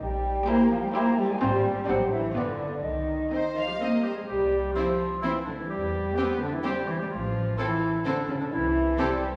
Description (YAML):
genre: cinematic, playful, whimsical film cue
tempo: 128 BPM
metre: 3/4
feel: straight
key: C minor, C major from 4.3 s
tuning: A4 = 440 Hz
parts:
  - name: mellow hollow silver concert flute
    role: second line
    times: 0.0-9.1 s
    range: C5 to Bb5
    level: -36 LUFS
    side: equal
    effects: none
  - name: dark French horn section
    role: sustained chords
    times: 0.0-9.2 s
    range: Db3 to B3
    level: -33 LUFS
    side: equal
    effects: none
  - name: dark studio cello section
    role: bass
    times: 0.0-9.2 s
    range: Db3 to B3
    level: -32 LUFS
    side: equal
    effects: none
  - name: warm studio double bass section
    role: bass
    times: 0.0-8.9 s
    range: G1 to E2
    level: -36 LUFS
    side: equal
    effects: none
  - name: clear studio violin section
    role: melody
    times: 0.5-9.1 s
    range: C5 to F5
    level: -40 LUFS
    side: equal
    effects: none
  - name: clear clarinet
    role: second line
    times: 0.5-9.1 s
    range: Db4 to B4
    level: -35 LUFS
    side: equal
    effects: none
  - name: clear studio violin section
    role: second line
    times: 0.5-9.1 s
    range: D4 to A4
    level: -40 LUFS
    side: equal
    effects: none
  - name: mellow cor anglais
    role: second line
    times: 0.5-9.2 s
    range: E4 to C5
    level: -39 LUFS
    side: equal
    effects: none
  - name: rich studio viola section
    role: accompaniment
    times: 0.5-9.1 s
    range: B3 to E4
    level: -37 LUFS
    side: equal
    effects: none
room: wet scoring stage reverb, RT60 1.9 s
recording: heard from further back in the room, small room ambience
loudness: -27 LUFS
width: mono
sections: 0.0-4.3 A section; 4.3-9.4 B section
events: none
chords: 0.0 C7/Bb; 1.4 Fm/Ab; 1.9 D7/A; 2.4 G7; 2.8 Cm; 4.3 C; 5.7 C/E; 7.1 Am; 8.5 Am/C